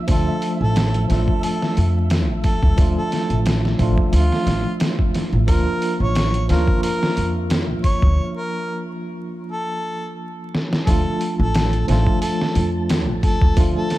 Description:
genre	trip hop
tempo	89 BPM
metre	4/4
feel	swing 54% on 16ths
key	D minor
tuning	A4 = 440 Hz
part	barky tine electric piano	accompaniment	0.0-14.0 s	F3 to F4	-24 LUFS	right 1 dB	fast stereo tremolo
part	flickering grainy texture	texture	0.0-14.0 s	E5 to A5	-39 LUFS	right 2 dB	built-in reverb
part	mellow harmonica	melody	0.1-14.0 s	F4 to C#5	-27 LUFS	equal	dub echo
part	upright bass	bass	0.1-13.7 s	A1 to F2	-19 LUFS	equal	none
part	trip hop sampler-style drum kit	drums	0.1-14.0 s	hi-hat, kick drum, snare drum	-21 LUFS	equal	overdrive
room	digital ambience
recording	dark, warm production, vinyl crackle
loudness	-17 LUFS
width	side -16 dB against mid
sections	0.0-10.9 A section; 10.9-14.0 B section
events	filter sweep on tine electric piano 0.0-10.9; break 8.2-10.9; drum fill 10.5-10.9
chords	0.1 Dm; 5.5 Bb; 10.9 Dm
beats	| 0.09 0.76 1.43 2.11 | 2.78 3.46 4.13 4.80 | 5.48 6.15 6.83 7.50 | 8.18 8.85 9.52 10.20 | 10.87 11.55 12.22 12.89 | 13.57

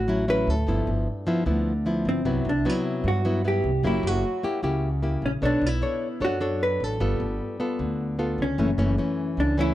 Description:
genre	bossa nova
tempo	152 BPM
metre	4/4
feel	straight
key	unclear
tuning	A4 = 440 Hz
part	hollow-body jazz guitar	melody	0.0-9.7 s	C4 to B4	-27 LUFS	equal	none
part	nylon-string guitar	accompaniment	0.0-9.7 s	F#2 to C#5	-26 LUFS	left 1 dB	none
part	upright bass	bass	0.0-9.7 s	F#1 to G2	-27 LUFS	right 1 dB	none
room	light reverb, studio reverb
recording	dry, close 1970s-style studio recording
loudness	-22 LUFS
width	side -14 dB against mid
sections	0.0-9.7 A section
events	none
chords	0.0 Dmaj9; 0.7 G6; 2.3 Cmaj7#11; 3.8 F#7b9; 5.4 Bm9; 7.0 G9; 8.6 F#m7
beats	0.28 | 0.68 1.07 1.47 1.86 | 2.26 2.65 3.05 3.44 | 3.84 4.23 4.63 5.03 | 5.42 5.82 6.21 6.61 | 7.00 7.40 7.79 8.19 | 8.58 8.98 9.37

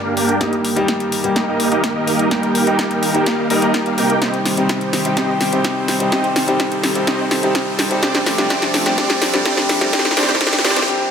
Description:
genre	EDM, festival progressive house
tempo	126 BPM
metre	4/4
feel	straight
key	unclear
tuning	A4 = 441 Hz
part	warm grand piano	accompaniment	0.0-11.1 s	G2 to Bb4	-20 LUFS	left 2 dB	vintage 12-bit sampler grit, sidechain pumping, tape echo
part	lush unison pad	sustained chords	0.0-10.9 s	D3 to D5	-24 LUFS	right 1 dB	chorus, sidechain pumping
part	supersaw chords	riff	0.0-10.8 s	Bb3 to G5	-21 LUFS	right 2 dB	sidechain pumping, low-pass filter, tape echo
part	riser	sound effects	2.0-10.9 s	none	-27 LUFS	right 2 dB	none
part	big-room dance drum kit	drums	0.2-10.9 s	hi-hat, snare drum	-20 LUFS	equal	small room reverb
part	electronic kick drum	drums	0.4-10.5 s	none	-28 LUFS	equal	none
room	moderate lush hall reverb, RT60 1.6 s, digital ambience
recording	high-pass filter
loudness	-14 LUFS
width	side -7 dB against mid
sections	0.0-11.1 A section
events	build-up 0.0-11.1; drum fill 0.0-10.9; filter sweep on supersaw synth 0.0-11.1; filter sweep 0.0-11.1; riser 2.0-10.9; break 10.9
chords	0.4 Eb; 4.2 Cm; 8.0 Dm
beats	| 0.41 0.89 1.36 1.84 | 2.31 2.79 3.27 3.74 | 4.22 4.69 5.17 5.65 | 6.12 6.60 7.08 7.55 | 8.03 8.50 8.98 9.46 | 9.93 10.41 10.88

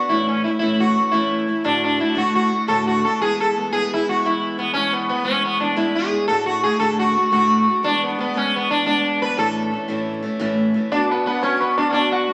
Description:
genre	celtic folk, Celtic slip jig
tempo	117 BPM (dotted quarters)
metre	9/8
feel	straight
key	A major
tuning	A4 = 439 Hz
part	sitar	melody	0.0-12.3 s	B3 to B4	-21 LUFS	equal	none
part	picked steel-string acoustic guitar	accompaniment	0.0-12.3 s	D2 to B4	-25 LUFS	equal	none
part	bluegrass banjo	second line	10.9-12.3 s	B4 to F#5	-29 LUFS	equal	none
room	wet large studio reverb, RT60 1.2 s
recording	vinyl crackle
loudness	-20 LUFS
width	mono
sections	0.0-10.9 A section; 10.9-12.3 A section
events	none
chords	0.1 A; 1.7 D; 3.2 E; 6.3 D; 7.8 E7; 9.4 A; 10.9 Bm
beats	| 0.10 0.62 1.14 | 1.65 2.17 2.69 | 3.20 3.72 4.23 | 4.75 5.26 5.78 | 6.29 6.80 7.32 | 7.83 8.35 8.86 | 9.37 9.89 10.40 | 10.92 11.43 11.94

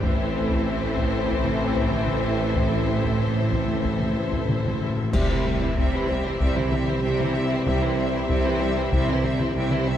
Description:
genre	cinematic, epic orchestral film score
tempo	95 BPM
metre	4/4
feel	straight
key	unclear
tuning	A4 = 440 Hz
part	clear symphonic violin section	melody	0.0-10.0 s	C5 to E5	-33 LUFS	left 4 dB	none
part	warm symphonic violin section	second line	0.0-10.0 s	C4 to E4	-33 LUFS	left 3 dB	none
part	rich studio viola section	accompaniment	0.0-10.0 s	E3 to G3	-32 LUFS	equal	none
part	mellow French horn section	sustained chords	0.0-10.0 s	C4 to E4	-33 LUFS	left 5 dB	none
part	mellow trombone section	sustained chords	0.0-10.0 s	C3 to A3	-34 LUFS	right 2 dB	none
part	rich symphonic string section	sustained chords	0.0-10.0 s	C4 to E5	-32 LUFS	left 2 dB	none
part	clear symphonic cello section	bass	0.0-10.0 s	A2 to C3	-29 LUFS	right 2 dB	none
part	mellow tuba	bass	0.0-10.0 s	A1 to C2	-29 LUFS	right 2 dB	none
part	rich symphonic double bass section	bass	0.0-10.0 s	A1 to C2	-31 LUFS	right 3 dB	none
part	taiko ensemble	drums	0.0-10.0 s	none	-28 LUFS	left 1 dB	none
part	timpani	percussion	0.0-5.1 s	A2	-31 LUFS	left 2 dB	none
part	clash cymbals and concert bass drum	percussion	5.1-6.4 s	none	-30 LUFS	left 1 dB	none
room	moderate concert hall reverb, RT60 1.9 s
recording	dark, warm production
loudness	-21 LUFS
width	side -10 dB against mid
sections	0.0-5.1 A section; 5.1-10.0 B section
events	timpani fill 0.0-5.1; band accent 5.1-5.8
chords	0.0 Am; 5.1 C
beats	| 0.02 0.65 1.28 1.91 | 2.56 3.20 3.85 4.50 | 5.14 5.77 6.41 7.04 | 7.67 8.29 8.92 9.55

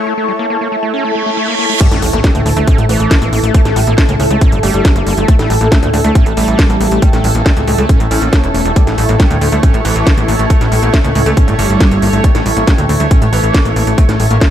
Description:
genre	psychedelic trance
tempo	138 BPM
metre	4/4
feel	straight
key	A major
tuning	A4 = 438 Hz
part	bubbling stepped-filter texture	sustained chords	0.0-14.5 s	A3 to C#5	-21 LUFS	right 3 dB	chorus, built-in reverb, sidechain pumping
part	overdriven acid bass	riff	0.0-14.5 s	G3 to E4	-21 LUFS	moving between left 7 dB and right 7 dB	distortion, auto-pan, sidechain pumping, digital delay
part	granular cloud pad	texture	0.0-14.5 s	E4 to A5	-19 LUFS	left 1 dB	built-in reverb, sidechain pumping
part	reverse cymbal and sub drop	sound effects	1.1-3.5 s	none	-20 LUFS	right 4 dB	none
part	oud	melody	1.8-14.5 s	A2 to C#4	-18 LUFS	equal	phaser, sidechain pumping, digital delay
part	electronic kick drum	drums	1.8-14.5 s	none	-10 LUFS	equal	none
part	garage drum kit	drums	1.8-14.5 s	crash cymbal, hi-hat, snare drum	-19 LUFS	equal	none
part	plucky analog bass	bass	1.9-14.4 s	E1 to D2	-15 LUFS	equal	none
room	digital ambience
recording	none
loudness	-9 LUFS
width	side -10 dB against mid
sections	0.0-1.8 A section; 1.8-14.5 B section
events	filter sweep on acid bass 0.0-1.8; reverse cymbal 1.1-1.8; drop 1.8-14.5; impact 1.8-3.5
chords	0.0 A5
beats	| 0.07 0.50 0.94 1.37 | 1.81 2.24 2.67 3.11 | 3.54 3.98 4.41 4.85 | 5.28 5.72 6.15 6.59 | 7.02 7.46 7.89 8.33 | 8.76 9.20 9.63 10.07 | 10.50 10.94 11.37 11.81 | 12.24 12.68 13.11 13.54 | 13.98 14.41

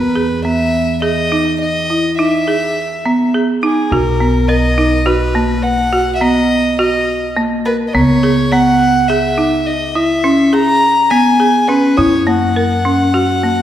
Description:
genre	contemporary instrumental, chamber music in an uneven meter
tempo	104 BPM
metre	7/4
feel	straight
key	unclear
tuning	A4 = 440 Hz
part	warm violin	melody	0.0-13.6 s	G#4 to A#5	-16 LUFS	left 1 dB	none
part	folk marimba with hard mallets	arpeggios	0.0-13.6 s	A#3 to A#4	-14 LUFS	right 1 dB	none
part	upright bass	bass	0.0-13.6 s	B1 to F#2	-20 LUFS	left 1 dB	none
room	wet scoring stage reverb, RT60 2.0 s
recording	recorded in a church or concert hall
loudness	-11 LUFS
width	side -11 dB against mid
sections	0.0-13.6 A section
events	none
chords	0.0 Emaj7; 3.9 Bmaj7; 7.9 C#m7; 12.0 F#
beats	0.45 1.03 1.61 2.19 2.77 3.34 | 3.92 4.49 5.06 5.64 6.21 6.79 7.37 | 7.94 8.52 9.09 9.67 10.24 10.82 11.40 | 11.98 12.56 13.14

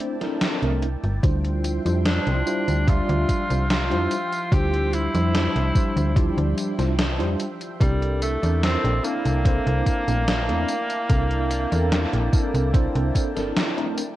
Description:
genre	vaporwave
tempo	73 BPM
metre	4/4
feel	straight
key	D minor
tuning	A4 = 440 Hz
part	tine electric piano	accompaniment	0.0-14.0 s	F3 to E5	-27 LUFS	equal	medium stereo tremolo, analog chorus, tape echo
part	lush unison pad	sustained chords	0.0-14.2 s	F3 to C6	-36 LUFS	equal	chorus, phaser
part	gated 80s digital drum machine	drums	0.0-14.1 s	hi-hat, snare drum, tambourine	-27 LUFS	equal	gated reverb, gated reverb snare, overdrive
part	slap-like FM bass	bass	0.6-13.5 s	G1 to F2	-23 LUFS	equal	none
part	electronic kick drum	drums	1.2-13.3 s	none	-21 LUFS	equal	overdrive
part	clear tenor saxophone	melody	2.1-13.6 s	G3 to G4	-27 LUFS	equal	tape echo
room	light reverb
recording	cassette tape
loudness	-20 LUFS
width	side -15 dB against mid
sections	0.0-14.2 A section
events	none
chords	0.0 C13; 1.2 Dm11; 7.8 C13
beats	0.41 | 1.23 2.06 2.88 3.70 | 4.52 5.34 6.17 6.99 | 7.81 8.63 9.45 10.27 | 11.10 11.92 12.74 13.56

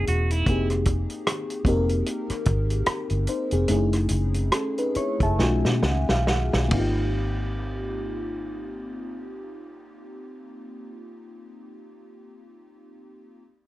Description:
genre	R&B, neo-soul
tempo	65-76 BPM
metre	4/4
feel	swing 59% on 16ths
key	Ab major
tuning	A4 = 435 Hz
part	semi-hollow electric guitar	second line	0.0-0.7 s	Fb4 to Gb4	-29 LUFS	right 4 dB	phaser
part	FM electric piano with soft pad layer	accompaniment	0.0-13.4 s	A3 to Db6	-28 LUFS	left 1 dB	chorus
part	vintage muted fingered electric bass	bass	0.0-11.5 s	Fb1 to B2	-25 LUFS	equal	none
part	warm soul drum kit	drums	0.1-7.0 s	hi-hat, kick drum, ride cymbal, rim click, snare drum	-27 LUFS	equal	none
room	light reverb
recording	dark, warm production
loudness	-22 LUFS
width	side -16 dB against mid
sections	0.0-7.2 A section; 7.2-10.9 B section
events	slowing down 0.5-7.2; FM electric piano fill 4.5-7.2; drum fill 5.4-7.2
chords	0.5 Fm7; 3.7 Gbm7; 5.4 B9; 6.7 Abmaj7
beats	| 0.46 1.25 2.05 2.86 | 3.68 4.52 5.38 6.27 | 7.18 8.11 9.04 9.97

